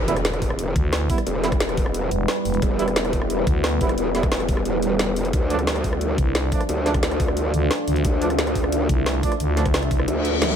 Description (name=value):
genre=dark technical drum and bass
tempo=177 BPM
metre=4/4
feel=straight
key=E phrygian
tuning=A4 = 440 Hz
part: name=deep dark ambient pad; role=sustained chords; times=0.6-10.6 s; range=G3 to E5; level=-26 LUFS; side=equal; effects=chorus, built-in reverb, sidechain pumping
part: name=growl bass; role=bass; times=0.0-10.6 s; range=E1 to D2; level=-24 LUFS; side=equal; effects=chorus, overdrive
part: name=impact and reverse cymbal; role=sound effects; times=0.0-1.3, 10.2-10.6 s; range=none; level=-31 LUFS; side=left 1 dB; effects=none
part: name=warm brass ensemble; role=stabs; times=0.1-9.6 s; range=F3 to E4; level=-29 LUFS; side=right 5 dB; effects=digital delay
part: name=drum and bass drum kit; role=drums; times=0.1-10.6 s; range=hi-hat, rim click, snare drum, toms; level=-26 LUFS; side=equal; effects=overdrive, studio reverb
part: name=electronic kick drum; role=drums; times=0.4-10.0 s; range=none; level=-23 LUFS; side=equal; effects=overdrive, studio reverb
part: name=growling FM bass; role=bass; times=0.8-3.8, 6.2-10.1 s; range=E1 to D2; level=-22 LUFS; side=equal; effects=none
room=digital ambience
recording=none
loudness=-19 LUFS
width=side -8 dB against mid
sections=0.0-10.6 A section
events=impact 0.0-1.3; kick drops out 10.1-10.6; reverse cymbal 10.2-10.6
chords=0.0 Em; 5.3 Dm